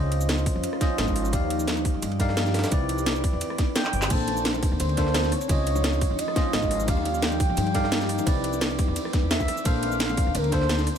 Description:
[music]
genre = liquid drum and bass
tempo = 173 BPM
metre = 4/4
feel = straight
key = Bb major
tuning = A4 = 440 Hz
[part]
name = bell-like tine electric piano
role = accompaniment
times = 0.0-10.9 s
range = Bb3 to F5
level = -30 LUFS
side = equal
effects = wide subtle chorus, tape echo
[part]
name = glassy FM pad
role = sustained chords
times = 0.0-11.0 s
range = E3 to C6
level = -33 LUFS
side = left 1 dB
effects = ensemble chorus, built-in reverb
[part]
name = upright bass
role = bass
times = 0.0-10.9 s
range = G1 to G2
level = -28 LUFS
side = equal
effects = none
[part]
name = breakbeat sampler-style drum kit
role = drums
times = 0.1-11.0 s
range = ride cymbal, snare drum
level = -34 LUFS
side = right 1 dB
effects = high-pass filter on cymbals, high-pass filter on snare
[part]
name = drum and bass drum kit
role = drums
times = 0.1-11.0 s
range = cabasa, crash cymbal, handclaps, hi-hat, ride cymbal, rim click, snare drum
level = -29 LUFS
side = equal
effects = none
[part]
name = electronic kick drum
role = drums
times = 0.5-10.6 s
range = none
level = -25 LUFS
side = equal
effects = overdrive
[part]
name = warm velvety synth lead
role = melody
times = 3.8-11.0 s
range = Bb4 to A5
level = -30 LUFS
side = right 1 dB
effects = chorus, tape echo
[part]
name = bongos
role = percussion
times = 4.3-10.8 s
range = none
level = -36 LUFS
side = left 4 dB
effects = none
[sound]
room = light reverb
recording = none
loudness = -22 LUFS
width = side -8 dB against mid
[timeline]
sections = 0.0-11.0 A section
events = kick drops out 3.8-4.1; drum fill 3.8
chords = 0.0 Dbmaj9; 1.3 Ebmaj9; 2.7 Cmaj9; 4.1 Bbmaj9; 5.3 Dbmaj9; 6.9 Ebmaj9; 8.3 Cmaj9; 9.7 Bbmaj9

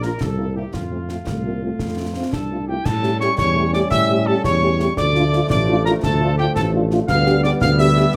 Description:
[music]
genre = military-style march for wind band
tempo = 113 BPM (dotted quarters)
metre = 6/8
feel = straight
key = unclear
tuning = A4 = 439 Hz
[part]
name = clear trumpet section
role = melody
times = 0.0-8.1 s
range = F4 to F5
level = -28 LUFS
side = equal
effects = none
[part]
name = mellow French horn section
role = accompaniment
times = 0.0-8.0 s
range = A3 to G4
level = -26 LUFS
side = equal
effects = none
[part]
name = mellow tuba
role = bass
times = 0.0-8.1 s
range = A1 to A2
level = -23 LUFS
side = equal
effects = none
[part]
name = concert snare drum, concert bass drum and clash cymbals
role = drums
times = 0.0-8.1 s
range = none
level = -29 LUFS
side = equal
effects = none
[part]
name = dark euphonium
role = second line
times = 1.3-2.9 s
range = A3 to E4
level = -30 LUFS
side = equal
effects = none
[part]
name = bright piccolo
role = second line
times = 2.3-8.2 s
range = G5 to F6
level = -25 LUFS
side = equal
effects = none
[part]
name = warm trombone section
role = sustained chords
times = 2.9-8.2 s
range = F3 to C#4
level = -26 LUFS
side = equal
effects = none
[sound]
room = moderate large studio reverb, RT60 0.9 s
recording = none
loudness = -19 LUFS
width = mono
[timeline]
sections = 0.0-2.9 A section; 2.9-8.2 B section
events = none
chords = 0.2 C7; 0.7 F; 2.9 A7; 5.0 Dm; 7.1 G7/D

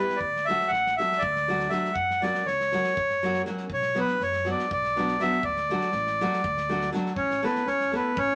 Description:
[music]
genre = balkan folk, Balkan wedding band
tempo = 242 BPM (eighths)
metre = 7/8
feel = straight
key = D major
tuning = A4 = 440 Hz
[part]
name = accordion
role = melody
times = 0.0-8.3 s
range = B4 to F#5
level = -27 LUFS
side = equal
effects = none
[part]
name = nylon-string guitar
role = accompaniment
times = 0.0-8.1 s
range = F#3 to A4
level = -32 LUFS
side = equal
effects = none
[part]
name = loose indie drum kit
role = percussion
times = 0.1-8.3 s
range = kick drum, snare drum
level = -44 LUFS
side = equal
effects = none
[part]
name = upright bass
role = bass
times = 0.2-8.3 s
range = A1 to F#2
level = -42 LUFS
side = equal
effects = none
[part]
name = dark clarinet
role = second line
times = 7.2-8.3 s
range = B3 to C#4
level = -32 LUFS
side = equal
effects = none
[sound]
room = moderate studio reverb, RT60 0.6 s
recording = none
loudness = -26 LUFS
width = mono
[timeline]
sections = 0.0-7.2 A section; 7.2-8.3 B section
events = none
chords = 0.2 D; 2.0 F#; 3.7 Bm; 5.4 D; 7.2 A

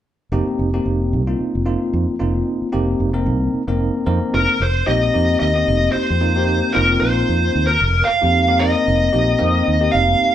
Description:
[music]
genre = jazz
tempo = 112 BPM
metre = 4/4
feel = swing 55% on 16ths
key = unclear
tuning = A4 = 436 Hz
[part]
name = bell-like tine electric piano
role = accompaniment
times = 0.3-10.3 s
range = Bb3 to C5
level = -20 LUFS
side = equal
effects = medium stereo tremolo
[part]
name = fretless electric bass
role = bass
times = 0.3-10.2 s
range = F1 to F2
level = -20 LUFS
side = equal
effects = none
[part]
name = smooth overdriven lead guitar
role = melody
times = 4.3-10.3 s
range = Bb4 to F5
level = -17 LUFS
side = left 1 dB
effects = none
[sound]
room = wet large studio reverb, RT60 0.9 s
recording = band playing live in one room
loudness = -15 LUFS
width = side -11 dB against mid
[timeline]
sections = 0.3-4.6 A section; 4.6-10.3 B section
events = tine electric piano fill 3.8-4.6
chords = 0.3 F9sus4

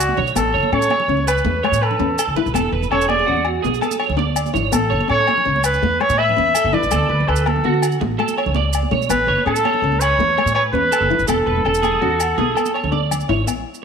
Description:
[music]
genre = highlife guitar band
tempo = 110 BPM (dotted quarters)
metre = 12/8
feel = straight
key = A major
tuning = A4 = 440 Hz
[part]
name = warm trumpet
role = melody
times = 0.0-13.1 s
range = F#4 to E5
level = -18 LUFS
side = equal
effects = none
[part]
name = nylon-string guitar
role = accompaniment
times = 0.0-13.8 s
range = C#3 to E4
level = -25 LUFS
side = left 11 dB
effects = none
[part]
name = electric guitar at the edge of break-up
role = arpeggios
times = 0.0-13.5 s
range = F#4 to D5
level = -23 LUFS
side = right 10 dB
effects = ensemble chorus, slapback echo
[part]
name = upright bass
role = bass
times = 0.0-13.6 s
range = E1 to D3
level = -22 LUFS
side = equal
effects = none
[part]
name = maracas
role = percussion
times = 0.0-13.8 s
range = none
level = -29 LUFS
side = right 13 dB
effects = none
[part]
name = congas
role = percussion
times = 0.1-13.5 s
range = none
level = -28 LUFS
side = right 11 dB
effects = none
[part]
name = agogo bells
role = percussion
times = 0.4-13.7 s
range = none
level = -27 LUFS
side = left 13 dB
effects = none
[sound]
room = moderate echo chamber reverb, RT60 1.7 s, small room ambience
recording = 1960s-style stereo with parts hard left and right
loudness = -15 LUFS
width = side -6 dB against mid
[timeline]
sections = 0.0-13.5 A section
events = drum fill 12.9-13.5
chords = 0.4 Aadd9; 2.5 E7sus4; 4.7 Aadd9; 6.9 D; 9.1 Aadd9; 11.3 E7sus4

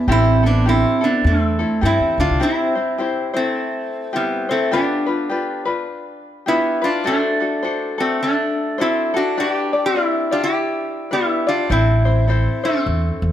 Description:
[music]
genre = Hawaiian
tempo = 103 BPM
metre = 4/4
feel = swing 61% on 8ths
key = C major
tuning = A4 = 440 Hz
[part]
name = metal-body resonator slide guitar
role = melody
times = 0.0-13.3 s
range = G3 to G4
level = -19 LUFS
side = equal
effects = none
[part]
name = vibraphone with medium mallets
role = second line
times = 0.0-1.8 s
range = A3 to C4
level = -21 LUFS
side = right 4 dB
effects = none
[part]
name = tenor ukulele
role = accompaniment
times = 0.0-13.3 s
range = C4 to D5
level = -23 LUFS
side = left 3 dB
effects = none
[part]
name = upright bass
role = bass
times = 0.1-2.4, 11.7-13.3 s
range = A1 to G2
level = -17 LUFS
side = equal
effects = none
[sound]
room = light reverb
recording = close, detailed microphones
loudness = -16 LUFS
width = side -11 dB against mid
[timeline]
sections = 0.0-2.4 A section; 2.4-13.3 B section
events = none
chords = 0.1 Am7; 2.4 C; 4.7 G7; 7.1 D7; 9.4 G; 11.7 Am

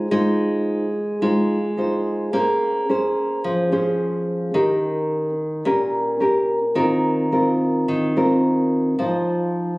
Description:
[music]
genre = bossa nova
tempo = 108 BPM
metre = 4/4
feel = straight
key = unclear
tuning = A4 = 441 Hz
[part]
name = nylon-string guitar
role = solo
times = 0.0-9.8 s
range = Bb2 to C5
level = -18 LUFS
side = equal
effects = none
[sound]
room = moderate large studio reverb, RT60 1.5 s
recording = recorded on a phone in the room, club reverb, compression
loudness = -18 LUFS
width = side -22 dB against mid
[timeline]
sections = 0.0-9.8 A section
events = none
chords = 0.0 Fm7/Ab; 2.3 Bbm9; 4.5 Eb7; 6.8 Bbsus24/Eb; 9.0 Cmadd11/F

